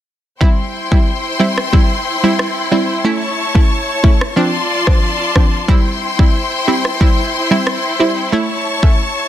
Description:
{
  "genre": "dancehall",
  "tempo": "91 BPM",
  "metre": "4/4",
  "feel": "straight",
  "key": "unclear",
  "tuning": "A4 = 440 Hz",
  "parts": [
    { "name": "analog pluck", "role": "accompaniment", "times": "0.4-9.0 s", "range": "F3 to E4", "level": "-17 LUFS", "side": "right 2 dB", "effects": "chorus, sidechain pumping" },
    { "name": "clear studio string section", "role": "sustained chords", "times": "0.4-9.3 s", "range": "E4 to C#6", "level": "-18 LUFS", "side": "left 2 dB", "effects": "sidechain pumping" },
    { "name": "afro-pop drum kit", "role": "drums", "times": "0.4-9.0 s", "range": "kick drum, rim click", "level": "-12 LUFS", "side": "equal", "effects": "soft clipping on snare" }
  ],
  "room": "digital ambience",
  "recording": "dense, heavily limited modern master",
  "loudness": "-12 LUFS",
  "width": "side -11 dB against mid",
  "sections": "0.4-9.3 A section",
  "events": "none",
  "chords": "0.4 C; 3.0 A; 4.4 Dm7; 5.7 C; 8.3 A"
}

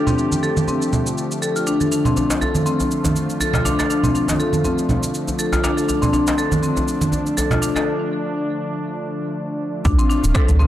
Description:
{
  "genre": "afro house",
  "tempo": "121 BPM",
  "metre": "4/4",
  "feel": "swing 55% on 16ths",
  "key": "D minor",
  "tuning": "A4 = 440 Hz",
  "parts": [
    { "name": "warm analog pad", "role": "sustained chords", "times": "0.0-10.7 s", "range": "D3 to G4", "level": "-24 LUFS", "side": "equal", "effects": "wide subtle chorus, sidechain pumping" },
    { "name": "marimba with medium hard mallets", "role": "arpeggios", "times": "0.0-10.7 s", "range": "C4 to A4", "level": "-21 LUFS", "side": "left 2 dB", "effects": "sidechain pumping, low-pass filter, digital delay" },
    { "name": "house drum kit", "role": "drums", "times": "0.1-10.7 s", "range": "cabasa, hi-hat, rim click, toms", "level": "-29 LUFS", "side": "right 1 dB", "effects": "overdrive, low-pass filter on perc, low-pass filter on hats, low-pass filter on snare, low-pass filter on toms, low-pass filter on room" },
    { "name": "congas", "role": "percussion", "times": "0.1-7.6 s", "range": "none", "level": "-22 LUFS", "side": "right 2 dB", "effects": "none" },
    { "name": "djembe", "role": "percussion", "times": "2.2-7.8 s", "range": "none", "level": "-25 LUFS", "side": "equal", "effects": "none" },
    { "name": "round analog bass", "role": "bass", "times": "9.9-10.7 s", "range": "D1 to D2", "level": "-15 LUFS", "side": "equal", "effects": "sidechain pumping" },
    { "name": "electronic kick drum", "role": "drums", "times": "9.9-10.5 s", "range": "none", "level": "-17 LUFS", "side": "equal", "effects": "overdrive" }
  ],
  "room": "moderate plate reverb, RT60 2.0 s, digital ambience",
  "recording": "dark, warm production",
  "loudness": "-17 LUFS",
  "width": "side -12 dB against mid",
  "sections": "0.0-9.9 A section",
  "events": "break 7.9-9.9",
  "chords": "0.0 Dm"
}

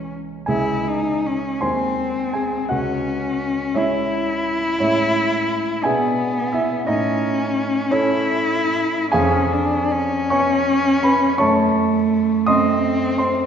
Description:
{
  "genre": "classical, romantic duo for cello and grand piano",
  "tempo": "48-58 BPM (dotted quarters)",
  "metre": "6/8",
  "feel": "rubato",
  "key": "C# minor",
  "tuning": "A4 = 440 Hz",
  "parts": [
    { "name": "warm cello", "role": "melody", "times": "0.0-13.5 s", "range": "A3 to E4", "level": "-20 LUFS", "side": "left 1 dB", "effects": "none" },
    { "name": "warm grand piano", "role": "accompaniment", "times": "0.0-13.5 s", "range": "C#2 to D#6", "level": "-20 LUFS", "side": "right 1 dB", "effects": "none" }
  ],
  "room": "wet concert hall reverb, RT60 2.1 s",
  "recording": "heard from further back in the room, nothing above 7.6 kHz",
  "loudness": "-17 LUFS",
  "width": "side -8 dB against mid",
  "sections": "0.5-13.5 A section",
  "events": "none",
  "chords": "0.5 C#m; 1.6 G#/D#; 2.7 C#m; 4.8 Amaj7; 5.9 E7/B; 6.9 A; 9.1 C#7/E#; 11.4 F#m; 12.5 F#dim7"
}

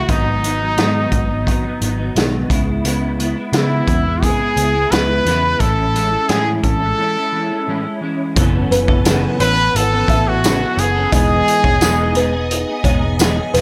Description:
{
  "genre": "indie pop, bedroom pop",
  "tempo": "87 BPM",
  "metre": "4/4",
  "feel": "straight",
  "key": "F# dorian",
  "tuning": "A4 = 440 Hz",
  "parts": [
    { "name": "clear trumpet", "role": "melody", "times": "0.0-12.5 s", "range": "D#4 to B4", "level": "-20 LUFS", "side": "equal", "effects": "lush chorus, slapback echo, plate reverb" },
    { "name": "clean electric guitar", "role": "accompaniment", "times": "0.0-13.6 s", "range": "F#2 to A4", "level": "-23 LUFS", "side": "equal", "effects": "ensemble chorus, warbly pitch drift, plate reverb" },
    { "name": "vintage muted picked electric bass", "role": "bass", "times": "0.1-13.6 s", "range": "E1 to C#3", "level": "-23 LUFS", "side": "equal", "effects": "none" },
    { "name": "raw garage drum kit", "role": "drums", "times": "0.1-13.6 s", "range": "hi-hat, kick drum, snare drum", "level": "-21 LUFS", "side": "equal", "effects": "none" },
    { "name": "string machine, violins", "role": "sustained chords", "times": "8.4-13.6 s", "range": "B4 to G#5", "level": "-31 LUFS", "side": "equal", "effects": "ensemble chorus, plate reverb" },
    { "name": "kalimba", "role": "second line", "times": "8.7-13.6 s", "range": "B4 to E5", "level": "-25 LUFS", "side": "equal", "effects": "analog chorus, slapback echo, plate reverb" },
    { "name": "tambourine", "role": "percussion", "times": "9.1-13.4 s", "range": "none", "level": "-29 LUFS", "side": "equal", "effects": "none" }
  ],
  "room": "moderate small room ambience, RT60 0.5 s",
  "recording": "none",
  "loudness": "-16 LUFS",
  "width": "mono",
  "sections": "0.0-8.4 A section; 8.4-13.6 B section",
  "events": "break 7.0-8.4",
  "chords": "0.1 G#m7; 2.5 C#m7; 5.6 Amaj7; 8.4 F#m11; 11.1 Emaj7"
}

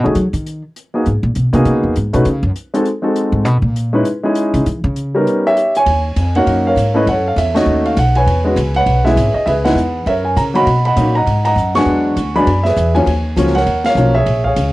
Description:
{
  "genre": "jazz piano trio",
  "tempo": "200 BPM",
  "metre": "4/4",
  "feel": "swing 61% on 8ths",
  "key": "Eb minor from 5.9 s",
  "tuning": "A4 = 440 Hz",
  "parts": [
    { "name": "warm concert grand piano", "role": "melody", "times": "0.0-14.7 s", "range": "F3 to Db6", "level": "-14 LUFS", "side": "equal", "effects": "cassette tape" },
    { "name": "upright bass", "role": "bass", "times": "0.0-14.7 s", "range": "G#1 to F#3", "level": "-16 LUFS", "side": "equal", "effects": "none" },
    { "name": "open jazz drum kit", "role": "drums", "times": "0.2-14.6 s", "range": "hi-hat, kick drum, ride cymbal, snare drum", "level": "-28 LUFS", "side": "right 1 dB", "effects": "cassette tape" }
  ],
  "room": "moderate booth ambience, RT60 0.2 s",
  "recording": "home recording on cassette",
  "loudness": "-12 LUFS",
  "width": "side -18 dB against mid",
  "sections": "0.0-5.9 A section; 5.9-14.7 B section",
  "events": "upright bass solo 0.0-5.9; band accent 7.5, 9.6, 11.7, 13.8",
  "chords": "0.0 B (rootless); 1.1 Emaj9#11; 2.3 D#m7 (rootless); 2.9 G#7b9; 3.5 C#m9; 4.7 A#dim (rootless); 5.3 D#7b13; 5.9 Ebm7; 7.1 Gbm7; 7.7 B7; 8.3 E69; 9.5 Dbm7; 10.1 Gb; 10.7 Bmaj7; 11.9 E9; 13.1 Ebm7"
}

